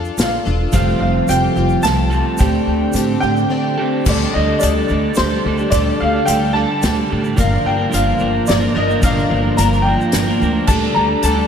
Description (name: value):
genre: folk rock and heartland rock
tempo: 109 BPM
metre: 3/4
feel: straight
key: unclear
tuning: A4 = 437 Hz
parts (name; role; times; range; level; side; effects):
- picked plugged-in twelve-string acoustic guitar; accompaniment; 0.0-11.5 s; G2 to Bb4; -22 LUFS; left 6 dB; analog chorus
- upright bass; bass; 0.0-11.4 s; E1 to A2; -19 LUFS; right 1 dB; none
- tube shaker; percussion; 0.0-11.4 s; none; -35 LUFS; right 7 dB; none
- clear baby grand piano; melody; 0.2-11.5 s; C5 to Bb5; -20 LUFS; equal; lush chorus, tape echo
- unplugged drum kit; drums; 0.2-11.4 s; crash cymbal, hi-hat, kick drum, snare drum; -21 LUFS; left 1 dB; none
- electric guitar at the edge of break-up; riff; 0.7-11.5 s; G2 to Bb4; -20 LUFS; right 4 dB; spring reverb
room: moderate lush hall reverb, RT60 2.1 s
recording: dreamy mix soaked in reverb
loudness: -14 LUFS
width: side -7 dB against mid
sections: 0.0-4.1 A section; 4.1-11.5 B section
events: break 3.5-4.1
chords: 0.0 Bbmaj7; 0.7 Fadd9; 2.4 D7sus4; 4.1 Dsus4; 7.4 Gm7; 10.7 Dsus4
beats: 0.17 | 0.73 1.29 1.84 | 2.40 2.95 3.51 | 4.06 4.61 5.17 | 5.72 6.27 6.82 | 7.38 7.93 8.48 | 9.03 9.58 10.13 | 10.69 11.24